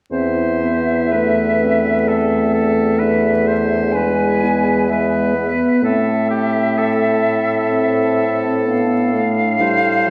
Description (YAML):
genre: classical, slow romantic movement for wind quintet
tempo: 64 BPM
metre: 3/4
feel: rubato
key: A minor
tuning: A4 = 440 Hz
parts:
  - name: silver concert flute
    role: melody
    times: 0.1-10.1 s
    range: E5 to G#5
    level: -23 LUFS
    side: equal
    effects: none
  - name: clear oboe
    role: second line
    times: 0.1-10.1 s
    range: G4 to C5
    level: -25 LUFS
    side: equal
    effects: none
  - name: dark clarinet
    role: accompaniment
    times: 0.1-10.1 s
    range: B3 to E4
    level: -27 LUFS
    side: equal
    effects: none
  - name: mellow French horn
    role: accompaniment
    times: 0.1-10.1 s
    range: G3 to C4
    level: -22 LUFS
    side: equal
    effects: none
  - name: warm bassoon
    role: bass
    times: 0.1-10.1 s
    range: E2 to A2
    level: -22 LUFS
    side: equal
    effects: none
room: wet recital hall reverb, RT60 1.4 s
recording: heard from further back in the room, vinyl crackle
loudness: -17 LUFS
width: mono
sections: 0.1-10.1 A section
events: none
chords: 0.1 Am/E; 3.0 E7; 5.8 Am; 8.7 Dm/A